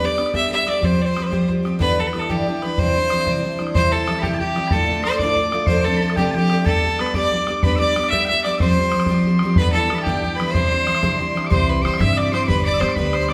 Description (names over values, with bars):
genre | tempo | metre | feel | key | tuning
celtic folk, Celtic jig | 124 BPM (dotted quarters) | 6/8 | straight | C major | A4 = 443 Hz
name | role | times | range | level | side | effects
clear fiddle | melody | 0.0-13.3 s | G4 to E5 | -23 LUFS | equal | none
picked twelve-string acoustic guitar | accompaniment | 0.0-13.3 s | D2 to G4 | -24 LUFS | equal | none
bodhran | percussion | 0.2-13.3 s | none | -26 LUFS | equal | none
loud bright bagpipes | second line | 3.7-13.3 s | E5 to E6 | -28 LUFS | equal | none
upright bass | bass | 11.5-13.3 s | G1 to C3 | -25 LUFS | equal | none
room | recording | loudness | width
wet stone room reverb, RT60 1.4 s | band playing live in one room | -19 LUFS | mono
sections
0.0-3.8 A section; 3.8-11.5 A section; 11.5-13.3 B section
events
none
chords
0.0 G; 0.8 Fsus2; 1.8 G6; 2.8 Cadd9; 3.8 C; 4.7 Dm; 5.7 F6; 6.7 G; 8.6 Fsus2; 9.6 G6; 10.5 Cadd9; 11.5 C; 12.5 G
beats
0.34 | 0.83 1.32 | 1.80 2.29 | 2.78 3.26 | 3.75 4.24 | 4.72 5.21 | 5.69 6.18 | 6.66 7.15 | 7.63 8.12 | 8.60 9.09 | 9.57 10.05 | 10.54 11.02 | 11.51 11.99 | 12.47 12.96